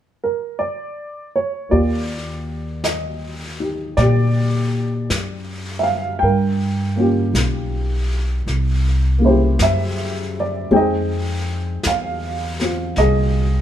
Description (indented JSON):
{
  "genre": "jazz ballad",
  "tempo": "53 BPM",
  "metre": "4/4",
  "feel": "swing 68% on 8ths",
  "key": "Eb major",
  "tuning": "A4 = 443 Hz",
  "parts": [
    { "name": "dark upright piano", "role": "accompaniment", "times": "0.2-13.6 s", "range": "Db3 to G5", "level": "-20 LUFS", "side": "equal", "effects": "none" },
    { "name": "upright bass", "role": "bass", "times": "1.7-13.6 s", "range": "Cb2 to Bb2", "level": "-20 LUFS", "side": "equal", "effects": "none" },
    { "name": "vintage brush drum kit", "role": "drums", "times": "1.7-13.6 s", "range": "brushed snare drum, hi-hat, snare drum", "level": "-29 LUFS", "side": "left 2 dB", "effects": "none" }
  ],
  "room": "light reverb",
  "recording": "minimal, uncompressed stereo recording",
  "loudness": "-17 LUFS",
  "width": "side -10 dB against mid",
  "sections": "0.0-1.7 A section; 1.7-13.6 B section",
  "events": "none",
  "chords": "0.0 N.C.; 1.7 Ebmaj9; 6.2 Gm7b5; 8.5 C7b9; 10.7 Fm9"
}